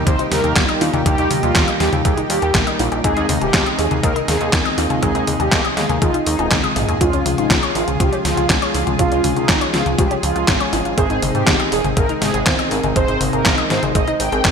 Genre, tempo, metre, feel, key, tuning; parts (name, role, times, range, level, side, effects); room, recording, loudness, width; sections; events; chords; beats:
italo disco; 121 BPM; 4/4; straight; Ab major; A4 = 441 Hz
lush unison pad; sustained chords; 0.0-14.5 s; Bb2 to Ab4; -24 LUFS; right 1 dB; chorus
dark concert grand piano; stabs; 0.0-14.5 s; G3 to C5; -25 LUFS; equal; analog chorus
chorused synth bass; bass; 0.0-14.5 s; Eb1 to Ab2; -22 LUFS; equal
mellow synth brass; melody; 0.1-14.4 s; Eb4 to G5; -22 LUFS; right 1 dB; chorus, ping-pong delay
analog pluck; arpeggios; 0.1-14.5 s; F3 to Eb5; -26 LUFS; left 4 dB; chorus, ping-pong delay
detuned 8-bit digital drum machine; drums; 0.1-14.5 s; handclaps, hi-hat, snare drum, toms; -20 LUFS; left 2 dB; gated reverb
electronic kick drum; drums; 0.1-14.5 s; -20 LUFS; equal
moderate lush hall reverb, RT60 1.8 s, digital ambience; bright 1980s-style digital production; -15 LUFS; side -6 dB against mid
0.0-14.5 A section
drum fill 6.5-7.0
0.0 Eb; 3.0 Ab/Eb; 7.0 Db; 11.0 Ab
0.07 0.56 | 1.06 1.55 2.05 2.55 | 3.04 3.54 4.03 4.53 | 5.03 5.52 6.02 6.51 | 7.01 7.50 8.00 8.50 | 8.99 9.49 9.98 10.48 | 10.98 11.47 11.97 12.46 | 12.96 13.46 13.95 14.45